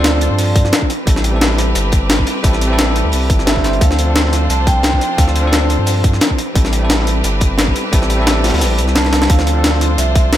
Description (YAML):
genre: liquid drum and bass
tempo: 175 BPM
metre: 4/4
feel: swing 54% on 16ths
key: D dorian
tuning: A4 = 440 Hz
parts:
  - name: vibraphone with medium hard mallets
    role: melody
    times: 0.0-0.7, 3.5-6.0, 9.0-10.4 s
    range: C5 to A5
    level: -23 LUFS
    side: right 3 dB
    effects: tape echo
  - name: bell-like tine electric piano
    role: accompaniment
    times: 0.0-10.4 s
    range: F3 to C5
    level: -21 LUFS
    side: equal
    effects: digital delay
  - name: rich studio string section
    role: sustained chords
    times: 0.0-10.4 s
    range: C4 to C5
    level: -23 LUFS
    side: left 1 dB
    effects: sidechain pumping
  - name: warm sub bass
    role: bass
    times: 0.0-10.4 s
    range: G1 to G2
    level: -16 LUFS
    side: equal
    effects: none
  - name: crunchy breakbeat drum kit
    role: drums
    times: 0.0-10.4 s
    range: hi-hat, snare drum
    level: -25 LUFS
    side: equal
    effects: none
  - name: jungle sampler-style drum kit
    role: drums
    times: 0.0-10.4 s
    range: hi-hat, snare drum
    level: -17 LUFS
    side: left 1 dB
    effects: overdrive
  - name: electronic kick drum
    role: drums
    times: 0.6-10.2 s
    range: none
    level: -14 LUFS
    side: equal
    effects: none
room: small room reverb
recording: none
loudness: -12 LUFS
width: side -12 dB against mid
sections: 0.0-10.4 A section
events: kick drops out 8.6-9.3; drum fill 9.0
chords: 0.0 Dm7; 0.9 Am7; 3.8 Dm7; 6.4 Am7; 9.3 Dm7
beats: 0.04 0.39 0.73 | 1.07 1.41 1.76 2.10 | 2.44 2.79 3.13 3.47 | 3.81 4.16 4.50 4.84 | 5.18 5.53 5.87 6.21 | 6.56 6.90 7.24 7.58 | 7.93 8.27 8.61 8.96 | 9.30 9.64 9.98 10.33